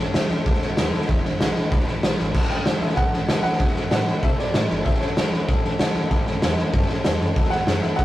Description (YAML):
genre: rockabilly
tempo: 191 BPM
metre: 4/4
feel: straight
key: A mixolydian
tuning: A4 = 440 Hz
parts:
  - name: clear upright piano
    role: melody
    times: 0.0-8.0 s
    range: C#5 to G5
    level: -29 LUFS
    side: equal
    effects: none
  - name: picked steel-string acoustic guitar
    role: accompaniment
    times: 0.0-8.0 s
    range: A2 to B4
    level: -31 LUFS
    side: left 3 dB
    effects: none
  - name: metallic FM bass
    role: bass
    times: 0.0-8.0 s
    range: E1 to C3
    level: -31 LUFS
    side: equal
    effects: none
  - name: raw garage drum kit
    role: drums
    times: 0.1-8.0 s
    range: crash cymbal, hi-hat, kick drum, snare drum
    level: -20 LUFS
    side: equal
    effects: none
room: light reverb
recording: rough rehearsal-room recording, tube saturation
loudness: -19 LUFS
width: side -15 dB against mid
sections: 0.0-2.3 A section; 2.3-8.0 A section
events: none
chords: 0.5 D7; 1.1 E7; 2.3 A7; 3.6 D7; 4.9 A7; 7.4 D7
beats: 0.15 0.47 0.78 | 1.09 1.41 1.72 2.04 | 2.35 2.66 2.98 3.29 | 3.60 3.92 4.23 4.54 | 4.86 5.17 5.49 5.80 | 6.12 6.43 6.74 7.06 | 7.37 7.68 8.00